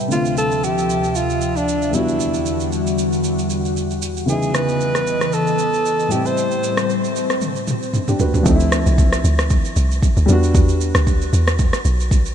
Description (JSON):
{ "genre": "amapiano", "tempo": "115 BPM", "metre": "4/4", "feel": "swing 55% on 16ths", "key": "unclear", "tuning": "A4 = 437 Hz", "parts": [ { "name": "dark baby grand piano", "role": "accompaniment", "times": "0.0-12.3 s", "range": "E2 to B5", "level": "-23 LUFS", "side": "equal", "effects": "none" }, { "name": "airy breathy pad", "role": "sustained chords", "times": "0.0-8.4 s", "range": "D2 to E5", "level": "-22 LUFS", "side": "left 1 dB", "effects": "chorus" }, { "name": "deep house drum kit", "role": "drums", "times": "0.0-12.3 s", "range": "kick drum, rim click, shaker, toms", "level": "-21 LUFS", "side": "equal", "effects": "none" }, { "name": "breathy alto saxophone", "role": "melody", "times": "0.1-7.0 s", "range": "D4 to C5", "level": "-21 LUFS", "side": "equal", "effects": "diffuse ambient delay" }, { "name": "deep log drum bass", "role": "bass", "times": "8.5-12.3 s", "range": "B1 to E2", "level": "-16 LUFS", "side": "equal", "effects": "none" } ], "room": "moderate huge ambient reverb, RT60 4.5 s", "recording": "dreamy mix soaked in reverb", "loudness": "-16 LUFS", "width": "side -9 dB against mid", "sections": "0.0-8.5 A section; 8.5-12.3 B section", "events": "drum fill 7.4-8.5; drop 8.5-12.3", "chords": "0.1 Dm9; 1.9 Em9; 4.3 C#m9; 6.1 Am7; 8.5 Dm9; 10.3 Em9" }